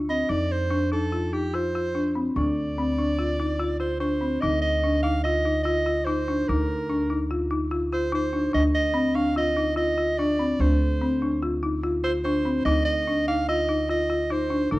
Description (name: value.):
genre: contemporary instrumental, chamber music in an uneven meter.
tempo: 146 BPM.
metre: 5/4.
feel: straight.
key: unclear.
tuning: A4 = 440 Hz.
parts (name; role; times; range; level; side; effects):
upright bass; bass; 0.0-14.8 s; D2 to F2; -29 LUFS; equal; none.
bright soprano saxophone; melody; 0.1-14.8 s; G4 to F5; -27 LUFS; right 2 dB; none.
folk marimba with medium hard mallets; arpeggios; 0.1-14.8 s; C4 to F4; -25 LUFS; left 1 dB; none.
room: light reverb.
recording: worn, warbling old tape, cassette tape, warbly pitch drift.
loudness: -22 LUFS.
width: side -19 dB against mid.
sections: 0.0-4.4 A section; 4.4-14.8 B section.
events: none.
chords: 0.3 F7; 2.4 Dm7; 4.4 Eb5/D; 8.5 F5/D; 12.7 N.C..